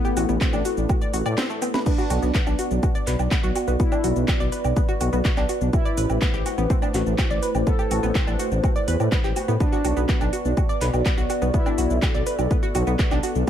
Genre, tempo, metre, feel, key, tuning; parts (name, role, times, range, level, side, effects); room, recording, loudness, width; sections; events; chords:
melodic techno; 124 BPM; 4/4; straight; B phrygian; A4 = 440 Hz
analog synth brass; melody; 0.0-13.5 s; B3 to A4; -31 LUFS; left 2 dB; chorus, sidechain pumping, dub echo
dark analog pad; sustained chords; 0.0-13.5 s; A3 to D5; -29 LUFS; right 1 dB; chorus, sidechain pumping
analog pluck; arpeggios; 0.0-13.3 s; A3 to D6; -28 LUFS; equal; chorus, sidechain pumping, analog delay
house drum kit; drums; 0.0-13.5 s; crash cymbal, handclaps, hi-hat, shaker, snare drum, woodblock; -30 LUFS; right 1 dB; small room ambience, dub echo
swelling detuned saw bass; bass; 0.2-13.4 s; A1 to A2; -23 LUFS; equal; sidechain pumping
electronic kick drum; drums; 0.4-13.5 s; -22 LUFS; equal; small room ambience
little or no reverb; echo-heavy mix; -20 LUFS; side -10 dB against mid
0.0-13.5 A section
drum fill 1.4-1.9
0.0 Am; 1.9 Bm; 5.7 Am; 9.6 Bm